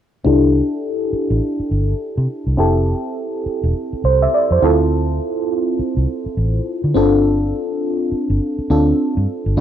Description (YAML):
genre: R&B, new jack swing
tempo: 103 BPM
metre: 4/4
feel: swing 61% on 16ths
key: unclear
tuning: A4 = 440 Hz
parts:
  - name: mellow FM electric piano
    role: accompaniment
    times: 0.2-9.6 s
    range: C4 to E5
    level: -17 LUFS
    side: equal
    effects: chorus, phaser, low-pass filter
  - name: vintage muted fingered electric bass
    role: bass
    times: 0.3-9.6 s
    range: E1 to D3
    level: -18 LUFS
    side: equal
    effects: none
room: wet studio reverb, RT60 0.7 s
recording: dark, warm production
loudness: -15 LUFS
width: side -10 dB against mid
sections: 0.3-9.6 A section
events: filter sweep on FM electric piano 0.3-9.6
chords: 0.3 C69; 2.6 Fmaj9; 4.6 Dm7; 7.0 G9sus4